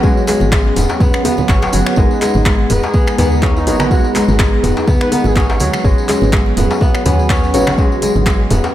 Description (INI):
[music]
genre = afro house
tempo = 124 BPM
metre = 4/4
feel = swing 55% on 16ths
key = unclear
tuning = A4 = 438 Hz
[part]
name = warm analog pad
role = sustained chords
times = 0.0-8.7 s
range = F#3 to A#5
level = -20 LUFS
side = right 1 dB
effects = chorus, sidechain pumping
[part]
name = kora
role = arpeggios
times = 0.0-8.7 s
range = F#3 to C#4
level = -18 LUFS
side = equal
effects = sidechain pumping, diffuse ambient delay
[part]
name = deep mellow chord stab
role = stabs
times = 0.0-8.7 s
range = C#4 to G#5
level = -22 LUFS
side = left 1 dB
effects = chorus, phaser, cassette tape, sidechain pumping, diffuse ambient delay
[part]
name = woody FM bass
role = bass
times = 0.0-8.6 s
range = D#1 to D#2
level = -18 LUFS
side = equal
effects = sidechain pumping
[part]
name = electronic kick drum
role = drums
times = 0.0-8.4 s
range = none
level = -14 LUFS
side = equal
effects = none
[part]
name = djembe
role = percussion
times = 0.0-8.7 s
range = none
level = -24 LUFS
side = left 3 dB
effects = none
[part]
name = tambourine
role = percussion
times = 0.0-8.7 s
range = none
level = -31 LUFS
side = left 1 dB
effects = none
[part]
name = deep house drum kit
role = drums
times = 0.3-8.6 s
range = finger snaps, handclaps, hi-hat, toms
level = -21 LUFS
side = equal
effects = none
[part]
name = congas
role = percussion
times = 0.3-8.6 s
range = none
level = -24 LUFS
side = right 2 dB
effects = none
[part]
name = expressive portamento lead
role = melody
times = 2.7-5.5 s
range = D#4 to B4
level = -24 LUFS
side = equal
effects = wide subtle chorus, diffuse ambient delay
[sound]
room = light reverb, small room ambience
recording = none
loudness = -11 LUFS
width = side -13 dB against mid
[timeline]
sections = 0.0-8.7 A section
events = none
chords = 0.0 F#sus4; 2.0 G#m7; 5.8 F#sus4